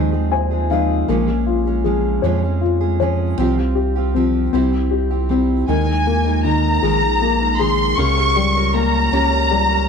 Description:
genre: six-eight pop ballad.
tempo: 52 BPM (dotted quarters).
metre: 6/8.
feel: straight.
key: unclear.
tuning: A4 = 437 Hz.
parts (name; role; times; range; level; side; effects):
dark upright piano; accompaniment; 0.0-9.9 s; Db3 to Ab5; -19 LUFS; left 10 dB; none.
fingerpicked steel-string acoustic guitar; arpeggios; 0.0-9.9 s; Ab2 to Db5; -23 LUFS; right 13 dB; none.
round analog bass; bass; 0.0-9.9 s; Bb1 to F2; -20 LUFS; right 2 dB; none.
rich studio violin section; second line; 5.7-9.9 s; Ab5 to Db6; -18 LUFS; equal; slapback echo.
room: light reverb, small room ambience.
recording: 1960s-style stereo with parts hard left and right.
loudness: -15 LUFS.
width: side -6 dB against mid.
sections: 0.0-9.9 A section.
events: upright piano fill 0.0-1.1.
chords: 0.0 Ab6; 1.1 Bbm7; 3.4 Csus4; 4.5 C; 5.7 Ebsus4; 8.0 Gdim/Db.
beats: | 1.08 2.23 | 3.38 4.53 | 5.68 6.83 | 7.98 9.13.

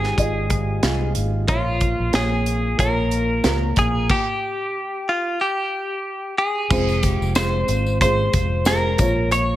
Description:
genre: piano-driven pop.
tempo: 92 BPM.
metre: 4/4.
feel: swing 56% on 16ths.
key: unclear.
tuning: A4 = 437 Hz.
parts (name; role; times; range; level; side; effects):
direct-recorded clean electric guitar; melody; 0.0-9.6 s; F4 to Db5; -23 LUFS; equal; none.
dark upright piano; accompaniment; 0.0-9.6 s; Ab2 to Eb5; -24 LUFS; right 1 dB; none.
vintage muted fingered electric bass; bass; 0.0-9.6 s; F1 to Db2; -23 LUFS; equal; none.
modern studio drum kit; drums; 0.0-9.5 s; crash cymbal, hi-hat, kick drum, snare drum; -23 LUFS; equal; none.
tambourine; percussion; 6.7-9.5 s; none; -36 LUFS; left 6 dB; none.
room: light reverb, small room ambience.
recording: none.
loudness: -18 LUFS.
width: side -14 dB against mid.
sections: 0.0-6.7 A section; 6.7-9.6 B section.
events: stop 4.1-6.7.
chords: 0.0 Fm/Ab; 1.5 Bbm; 4.1 N.C.; 6.7 Fm; 9.0 Bbm.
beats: 0.18 0.83 | 1.48 2.14 2.79 3.44 | 4.09 4.75 5.40 6.05 | 6.71 7.36 8.01 8.67 | 9.32.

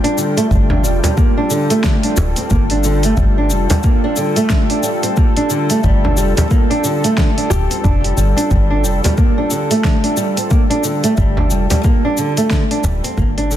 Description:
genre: organic downtempo.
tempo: 90 BPM.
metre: 4/4.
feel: swing 60% on 16ths.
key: G minor.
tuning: A4 = 440 Hz.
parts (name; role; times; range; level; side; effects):
warm analog pad; sustained chords; 0.0-13.6 s; G3 to G5; -23 LUFS; left 2 dB; wide subtle chorus, sidechain pumping, shimmer reverb.
flamenco guitar; arpeggios; 0.0-13.6 s; D3 to G4; -17 LUFS; right 2 dB; ping-pong delay, shimmer reverb.
deep house drum kit; drums; 0.0-13.6 s; cabasa, hi-hat, snare drum; -23 LUFS; left 1 dB; none.
woody FM bass; bass; 0.5-13.6 s; D1 to G1; -16 LUFS; equal; sidechain pumping.
electronic kick drum; drums; 0.5-13.3 s; none; -15 LUFS; equal; none.
frame drum; percussion; 0.7-13.0 s; none; -20 LUFS; equal; none.
room: light reverb.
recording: dense, heavily limited modern master.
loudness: -12 LUFS.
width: side -11 dB against mid.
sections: 0.0-13.6 A section.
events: fade-out 12.1-13.6.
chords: 0.0 G7(no3).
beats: | 0.51 1.18 1.84 2.51 | 3.18 3.84 4.51 5.18 | 5.84 6.51 7.18 7.84 | 8.51 9.18 9.84 10.51 | 11.18 11.84 12.51 13.18.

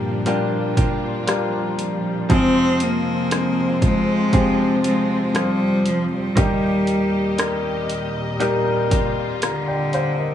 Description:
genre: pop ballad.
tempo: 59 BPM.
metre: 4/4.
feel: straight.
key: unclear.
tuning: A4 = 441 Hz.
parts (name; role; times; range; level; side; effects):
rich cello; melody; 0.0-10.3 s; D3 to C4; -21 LUFS; equal; none.
warm baby grand piano; accompaniment; 0.0-10.3 s; Eb2 to Bb5; -23 LUFS; left 3 dB; none.
warm studio string section; sustained chords; 0.0-10.3 s; Bb2 to Eb5; -26 LUFS; right 1 dB; none.
direct-recorded clean electric guitar; arpeggios; 0.0-10.3 s; G2 to Ab4; -29 LUFS; right 6 dB; none.
punchy analog drum machine; drums; 0.3-10.2 s; hi-hat, kick drum, rim click; -22 LUFS; equal; none.
room: light reverb, studio ambience.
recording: small room ambience.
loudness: -17 LUFS.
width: side -10 dB against mid.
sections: 0.0-10.3 A section.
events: none.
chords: 0.0 Gm7; 2.3 Fm; 6.4 Eb.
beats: 0.27 1.28 | 2.30 3.32 4.33 5.35 | 6.37 7.38 8.40 9.42.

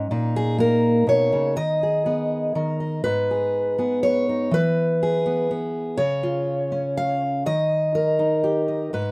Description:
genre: folk, solo fingerstyle acoustic guitar.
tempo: 122 BPM.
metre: 3/4.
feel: straight.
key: G# minor.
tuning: A4 = 440 Hz.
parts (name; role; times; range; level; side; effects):
fingerpicked steel-string acoustic guitar; solo; 0.0-9.1 s; G#2 to E#5; -22 LUFS; equal; none.
room: light reverb.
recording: faint mains hum.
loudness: -22 LUFS.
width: mono.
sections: 0.0-3.0 A section; 3.0-9.1 B section.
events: none.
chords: 0.1 A#madd11; 1.6 G#m/D#; 2.6 D#5; 3.0 G#m; 4.5 E; 6.0 C#; 7.5 D#.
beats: | 0.11 0.60 1.08 | 1.57 2.06 2.55 | 3.05 3.54 4.03 | 4.52 5.01 5.50 | 5.99 6.47 6.96 | 7.45 7.94 8.44 | 8.93.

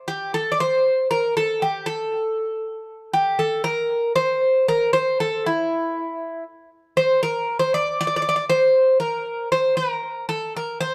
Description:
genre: greek folk.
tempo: 235 BPM (eighths).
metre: 7/8.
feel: straight.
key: A phrygian.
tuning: A4 = 440 Hz.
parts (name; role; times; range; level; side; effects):
Greek bouzouki; solo; 0.1-10.9 s; E4 to D5; -22 LUFS; equal; analog delay.
room: moderate studio reverb, RT60 0.5 s.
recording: heard from further back in the room.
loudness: -22 LUFS.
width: mono.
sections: 0.0-3.6 A section; 3.6-10.9 B section.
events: none.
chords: none.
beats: | 0.08 0.34 0.59 0.84 1.10 1.35 1.61 | 1.86 2.12 2.37 2.62 2.88 3.13 3.39 | 3.64 3.90 4.15 4.41 4.66 4.92 5.17 | 5.43 5.69 5.94 6.20 6.45 6.71 6.96 | 7.22 7.47 7.73 7.99 8.24 8.50 8.75 | 9.01 9.27 9.52 9.78 10.04 10.29 10.55 | 10.80.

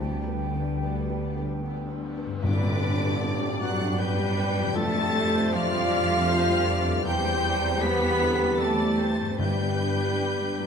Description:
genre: cinematic, emotional film score for orchestra.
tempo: 78 BPM.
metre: 3/4.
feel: uneven beats, rubato.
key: G major.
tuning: A4 = 440 Hz.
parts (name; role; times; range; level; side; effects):
rich symphonic violin section; melody; 0.0-10.7 s; B4 to B6; -33 LUFS; left 3 dB; none.
mellow small flute group; second line; 0.0-10.7 s; D5 to B5; -33 LUFS; right 2 dB; none.
warm symphonic violin section; second line; 0.0-10.7 s; D4 to B5; -37 LUFS; left 2 dB; none.
clear symphonic viola section; accompaniment; 0.0-10.7 s; G3 to D5; -34 LUFS; equal; none.
felt-muted upright piano; accompaniment; 0.0-10.7 s; D2 to B4; -32 LUFS; left 2 dB; none.
warm French horn section; sustained chords; 0.0-10.7 s; C3 to G4; -34 LUFS; left 2 dB; none.
concert harp; arpeggios; 0.0-10.7 s; E2 to B5; -35 LUFS; left 6 dB; none.
rich symphonic cello section; bass; 0.0-10.7 s; D3 to B3; -31 LUFS; right 2 dB; none.
rich symphonic double bass section; bass; 0.0-10.7 s; D2 to G2; -31 LUFS; right 2 dB; none.
mellow clarinet; second line; 2.4-10.7 s; D4 to B4; -32 LUFS; equal; none.
tam-tam; percussion; 2.4-5.5 s; none; -38 LUFS; left 1 dB; none.
timpani; percussion; 2.4-3.6, 9.4-10.6 s; G2; -30 LUFS; right 1 dB; none.
room: wet recital hall reverb, RT60 1.8 s.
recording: none.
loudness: -23 LUFS.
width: side -6 dB against mid.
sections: 0.0-2.4 A section; 2.4-10.7 B section.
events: band accent 2.4-3.2.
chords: 0.0 G/D; 2.4 Gmaj7; 4.8 Fadd9; 7.0 C/E; 9.4 G.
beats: 0.81 1.62 | 2.43 3.21 3.99 | 4.77 5.53 6.28 | 7.05 7.82 8.59 | 9.38 10.19.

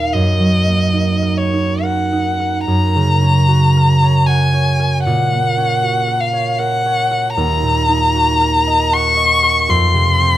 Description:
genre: classical, romantic duo for violin and harp.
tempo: 65-79 BPM.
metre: 3/4.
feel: rubato.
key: unclear.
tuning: A4 = 441 Hz.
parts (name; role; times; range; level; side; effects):
rich violin; melody; 0.0-10.4 s; Db5 to Db6; -16 LUFS; left 2 dB; none.
concert harp; accompaniment; 0.0-10.4 s; Eb2 to Gb5; -15 LUFS; right 2 dB; none.
room: moderate recital hall reverb, RT60 1.4 s.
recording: close, detailed microphones.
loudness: -12 LUFS.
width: side -13 dB against mid.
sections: 0.0-10.4 A section.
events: none.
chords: 0.1 Ebm/Gb; 2.7 Gb; 5.1 Gb/Bb; 7.4 Ebm; 9.7 F7(no3).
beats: | 0.12 0.93 1.82 | 2.67 3.48 4.27 | 5.05 5.83 6.59 | 7.36 8.15 8.93 | 9.69.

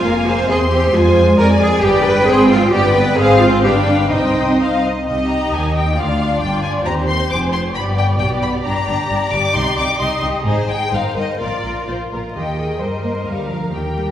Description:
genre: quick classical-period movement for string orchestra.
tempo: 133 BPM.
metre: 2/4.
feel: rubato.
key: C minor, Eb major from 8.6 s.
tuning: A4 = 440 Hz.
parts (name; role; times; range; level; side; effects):
rich symphonic violin section; melody; 0.0-14.1 s; C5 to D6; -22 LUFS; left 4 dB; none.
warm symphonic violin section; second line; 0.0-14.1 s; B3 to F5; -21 LUFS; left 1 dB; none.
rich symphonic viola section; accompaniment; 0.0-14.1 s; G3 to Eb5; -21 LUFS; equal; none.
rich symphonic cello section; bass; 0.0-14.1 s; D2 to C5; -19 LUFS; right 1 dB; none.
rich symphonic double bass section; bass; 0.0-14.1 s; F1 to G2; -21 LUFS; right 1 dB; none.
room: wet scoring stage reverb, RT60 1.7 s.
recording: heard from further back in the room, vinyl crackle.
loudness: -14 LUFS.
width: side -11 dB against mid.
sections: 0.0-5.1 A section; 5.1-12.4 B section; 12.4-14.1 A section.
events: none.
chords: 0.5 C/E; 0.9 Fm; 1.8 G; 2.3 Fm/Ab; 2.7 G; 3.2 Fm/Ab; 3.6 G7; 4.1 Cm; 6.0 G5/D; 6.9 Cm/Eb; 7.3 Dm7b5/F (rootless); 7.8 G; 8.6 Gm; 9.5 Cm; 10.4 Ab; 10.9 Eb/G; 11.4 Bb; 12.4 Eb; 13.3 Bb/D.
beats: 0.05 | 0.50 0.94 | 1.39 1.83 | 2.28 2.73 | 3.18 3.64 | 4.11 4.59 | 5.06 5.51 | 5.97 6.42 | 6.86 7.31 | 7.75 8.20 | 8.65 9.10 | 9.55 10.00 | 10.45 10.91 | 11.39 11.88 | 12.36 12.81 | 13.27 13.72.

